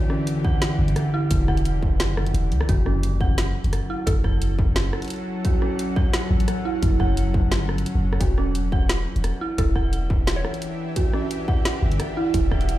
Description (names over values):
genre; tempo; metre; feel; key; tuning
half-time drum and bass; 174 BPM; 4/4; swing 53% on 16ths, half-time; unclear; A4 = 438 Hz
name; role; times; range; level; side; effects
bowed-like drone; sustained chords; 0.0-12.8 s; D3 to F#5; -29 LUFS; equal; built-in reverb, sidechain pumping
dark detuned synth bell; arpeggios; 0.0-12.8 s; C#4 to F#5; -29 LUFS; right 3 dB; chorus, phaser, tape echo
drum and bass drum kit; drums; 0.1-12.8 s; hi-hat, rim click, snare drum; -29 LUFS; equal; none
electronic kick drum; drums; 0.4-12.6 s; none; -22 LUFS; equal; distortion
long sustained 808-style bass; bass; 0.8-12.8 s; E1 to C#2; -23 LUFS; equal; none
mallet-like synth pluck; melody; 4.1-4.3, 9.6-10.8 s; A4 to C#5; -36 LUFS; equal; lush chorus, tape echo
room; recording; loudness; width
light reverb; played on a big sound system in a bare room, large studio reverb; -20 LUFS; side -15 dB against mid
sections
0.0-12.8 A section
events
none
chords
0.0 Em7; 2.7 F#m; 8.2 Em7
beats
0.27 0.62 0.96 | 1.31 1.65 2.00 2.34 | 2.69 3.03 3.38 3.72 | 4.07 4.41 4.76 5.10 | 5.45 5.79 6.14 6.48 | 6.83 7.17 7.51 7.86 | 8.21 8.55 8.89 9.24 | 9.58 9.93 10.27 10.62 | 10.96 11.31 11.65 12.00 | 12.34 12.69